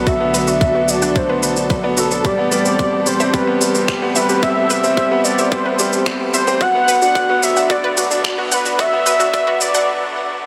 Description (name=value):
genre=piano and strings electronica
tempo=110 BPM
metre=4/4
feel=straight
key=unclear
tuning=A4 = 440 Hz
part: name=warm velvety synth lead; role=melody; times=0.0-9.9 s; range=A4 to F#5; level=-20 LUFS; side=equal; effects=chorus, cassette tape
part: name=warm studio string section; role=sustained chords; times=0.0-10.5 s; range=C3 to A4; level=-28 LUFS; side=equal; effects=sidechain pumping
part: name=unison pluck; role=arpeggios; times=0.0-9.9 s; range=F#4 to F#5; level=-27 LUFS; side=equal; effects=none
part: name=clear upright piano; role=riff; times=0.0-10.5 s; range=F#3 to D4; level=-22 LUFS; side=equal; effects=delay
part: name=round analog bass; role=bass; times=0.0-9.9 s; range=A1 to B1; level=-41 LUFS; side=equal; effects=sidechain pumping
part: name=electronic kick drum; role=drums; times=0.1-9.4 s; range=none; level=-23 LUFS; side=equal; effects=none
part: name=electronic shaker and finger snaps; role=drums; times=0.1-9.9 s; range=none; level=-25 LUFS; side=equal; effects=none
room=wet huge ambient reverb, RT60 6.2 s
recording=high-pass filter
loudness=-16 LUFS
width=mono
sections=0.0-10.5 A section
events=build-up 0.0-10.5; break 9.9-10.5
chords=0.0 Bm7; 2.2 Am9; 6.6 Bm7